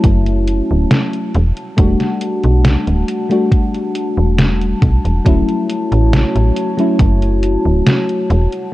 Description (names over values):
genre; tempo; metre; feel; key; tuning
vaporwave; 69 BPM; 4/4; straight; D major; A4 = 442 Hz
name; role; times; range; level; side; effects
mellow FM electric piano; accompaniment; 0.0-8.3 s; F#3 to F#4; -18 LUFS; left 2 dB; wide subtle chorus, analog delay
warbly tape-like pad; sustained chords; 0.0-8.7 s; G3 to A5; -24 LUFS; equal; chorus, built-in reverb
slap-like FM bass; bass; 0.0-8.5 s; D1 to B1; -14 LUFS; equal; tube saturation
detuned 8-bit digital drum machine; drums; 0.0-8.7 s; hi-hat, snare drum; -16 LUFS; equal; overdrive, vintage 12-bit sampler grit
electronic kick drum; drums; 0.0-7.2 s; none; -13 LUFS; equal; overdrive, vintage 12-bit sampler grit
room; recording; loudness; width
digital ambience; dark, warm production, cassette tape; -12 LUFS; side -17 dB against mid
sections
0.0-8.7 A section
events
none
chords
0.0 Dmaj7 (rootless); 1.3 Em11; 5.3 Dmaj7 (rootless)